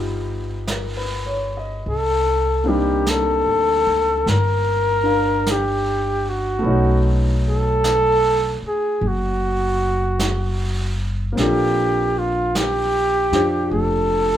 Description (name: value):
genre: jazz ballad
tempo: 50 BPM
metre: 4/4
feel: swing 67% on 8ths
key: unclear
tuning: A4 = 444 Hz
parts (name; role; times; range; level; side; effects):
- clear baby grand piano; accompaniment; 0.0-14.4 s; G3 to F5; -24 LUFS; left 1 dB; none
- upright bass; bass; 0.0-14.4 s; F1 to F2; -23 LUFS; equal; none
- vintage brush drum kit; drums; 0.7-14.4 s; brushed snare drum, hi-hat, snare drum; -30 LUFS; right 2 dB; none
- trumpet with bucket mute; melody; 1.9-14.4 s; F4 to Bb4; -19 LUFS; equal; none
room: moderate studio reverb, RT60 0.5 s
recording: heard from further back in the room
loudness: -17 LUFS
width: side -11 dB against mid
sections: 0.0-14.4 A section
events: none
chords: 0.0 Gaug7; 1.9 Cm9; 6.6 B9; 11.4 Bbmaj9